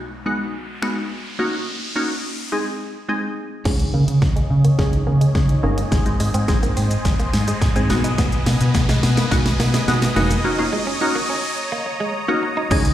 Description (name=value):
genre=dance-pop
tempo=106 BPM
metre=4/4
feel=straight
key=unclear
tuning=A4 = 439 Hz
part: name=glassy wavetable pluck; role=accompaniment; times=0.0-12.9 s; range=Eb3 to Bb4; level=-23 LUFS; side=equal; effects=chorus, sidechain pumping, low-pass filter, slapback echo
part: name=deep dub fingered electric bass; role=bass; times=0.0-12.9 s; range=F1 to Db3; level=-19 LUFS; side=equal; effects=sidechain pumping
part: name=riser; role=sound effects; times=0.0-11.6 s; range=none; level=-31 LUFS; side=equal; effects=slapback echo
part: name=pop drum kit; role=drums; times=0.8-12.9 s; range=crash cymbal, finger snaps, hi-hat, kick drum, shaker, snare drum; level=-21 LUFS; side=equal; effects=none
part: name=supersaw pad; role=sustained chords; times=3.9-12.9 s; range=Cb5 to Eb6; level=-27 LUFS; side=equal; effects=phaser, sidechain pumping, low-pass filter
part: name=direct-recorded clean electric guitar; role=riff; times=3.7-12.8 s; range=Ab3 to Eb4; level=-29 LUFS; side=right 3 dB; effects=analog chorus, low-pass filter, slapback echo
room=light reverb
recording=live gig heard through the venue's PA, recital hall reverb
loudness=-17 LUFS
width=side -12 dB against mid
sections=0.0-3.7 A section; 3.7-12.7 B section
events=riser 0.0-3.7, 4.7-12.7; build-up 3.7-12.7; drum fill 3.7-10.4; filter sweep 3.7-12.7; break 10.4-12.7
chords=0.0 Cb6; 1.4 Gb6; 2.5 Ab; 3.7 Dbsus2; 5.9 Ab; 7.9 Cb6; 10.4 Gb6